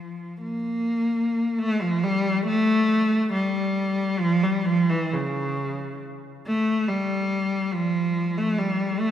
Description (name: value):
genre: classical, free, expressive piece for unaccompanied cello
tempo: 42-74 BPM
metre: 3/4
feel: rubato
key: F major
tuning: A4 = 438 Hz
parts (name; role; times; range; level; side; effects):
- rich cello; solo; 0.0-9.1 s; Db3 to Bb3; -22 LUFS; equal; none
room: wet church reverb, RT60 3.0 s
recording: none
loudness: -22 LUFS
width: side -10 dB against mid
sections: 0.0-1.6 A section; 1.6-9.1 B section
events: none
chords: none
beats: 0.39 | 1.60 2.44 3.31 | 4.20 5.09 5.99 | 6.87 7.73 8.56